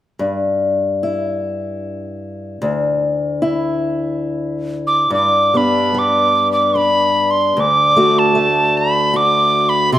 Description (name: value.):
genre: celtic folk, Celtic slow air.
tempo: 74 BPM.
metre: 3/4.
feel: uneven beats, rubato.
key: G major.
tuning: A4 = 440 Hz.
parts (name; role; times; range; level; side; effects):
fingerpicked acoustic archtop guitar; accompaniment; 0.2-10.0 s; D2 to F#4; -17 LUFS; left 2 dB; none.
tin whistle; melody; 4.9-10.0 s; A5 to D6; -14 LUFS; right 2 dB; slapback echo.
room: moderate recital hall reverb, RT60 1.8 s.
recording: none.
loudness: -13 LUFS.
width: side -13 dB against mid.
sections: 0.2-5.1 A section; 5.1-10.0 B section.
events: none.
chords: 0.2 Em/G; 2.6 Dsus2; 5.1 G; 7.6 D.